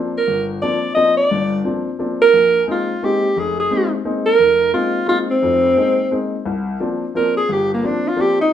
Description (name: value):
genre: jazz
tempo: 175 BPM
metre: 3/4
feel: swing 64% on 8ths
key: C minor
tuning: A4 = 442 Hz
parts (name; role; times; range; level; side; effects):
- warm upright piano; accompaniment; 0.0-8.4 s; F1 to Eb4; -21 LUFS; left 3 dB; none
- warm alto saxophone; melody; 0.2-8.5 s; Bb3 to Eb5; -15 LUFS; right 1 dB; none
room: wet studio reverb, RT60 0.8 s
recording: heard from further back in the room, nothing above 10.4 kHz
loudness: -15 LUFS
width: side -9 dB against mid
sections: 0.0-6.4 A section; 6.4-8.5 B section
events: alto saxophone solo 6.4-8.5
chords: 0.0 C9sus4; 2.3 Bb9sus4; 6.4 C9sus4